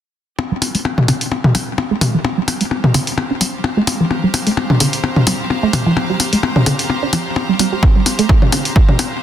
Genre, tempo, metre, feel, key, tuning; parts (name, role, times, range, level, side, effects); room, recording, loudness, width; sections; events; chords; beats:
minimal techno; 129 BPM; 4/4; swing 55% on 16ths; G minor; A4 = 440 Hz
electronic percussion blips and toms; percussion; 0.4-9.1 s; -17 LUFS; left 2 dB; digital delay
bright chamber string section; texture; 0.4-9.2 s; G4 to Bb5; -26 LUFS; right 1 dB; sidechain pumping
resonant blip pluck; riff; 0.5-9.0 s; D3 to G4; -19 LUFS; right 3 dB; chorus, phaser, sidechain pumping, digital delay
electronic hi-hat; drums; 0.6-9.1 s; -18 LUFS; equal
electronic kick drum; drums; 7.8-8.9 s; -11 LUFS; right 1 dB
light reverb; dense, heavily limited modern master; -13 LUFS; side -10 dB against mid
0.4-9.2 A section
fade-in on string section 0.4-9.2; filter sweep on synth arpeggio sound 0.4-9.2
0.4 Gm
| 0.39 0.85 1.32 1.78 | 2.25 2.71 3.18 3.64 | 4.11 4.57 5.04 5.50 | 5.97 6.43 6.90 7.36 | 7.83 8.29 8.76 9.22